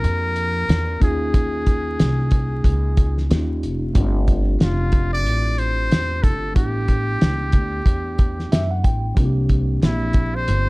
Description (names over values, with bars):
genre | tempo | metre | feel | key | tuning
hip hop, jazz-hop | 92 BPM | 4/4 | swing 58% on 16ths | G dorian | A4 = 439 Hz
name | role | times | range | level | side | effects
trumpet with metal mute | melody | 0.0-10.7 s | E4 to D5 | -25 LUFS | equal | none
tine electric piano | accompaniment | 0.0-10.7 s | F3 to G5 | -27 LUFS | equal | fast stereo tremolo, plate reverb
upright bass | bass | 0.0-10.7 s | F1 to F#2 | -22 LUFS | equal | none
cloth-damped thuddy drum kit | drums | 0.0-10.7 s | hi-hat, kick drum, snare drum | -18 LUFS | equal | none
room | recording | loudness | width
light reverb | dark, warm production, vinyl crackle | -17 LUFS | side -23 dB against mid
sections
0.0-4.0 A section; 4.0-10.7 B section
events
tine electric piano fill 8.2-9.2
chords
0.0 C9sus4; 1.0 Eb9sus4; 4.0 G9sus4; 6.6 A9sus4; 9.2 C9sus4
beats
0.04 0.69 | 1.34 2.00 2.65 3.30 | 3.95 4.60 5.26 5.91 | 6.56 7.21 7.87 8.52 | 9.17 9.82 10.47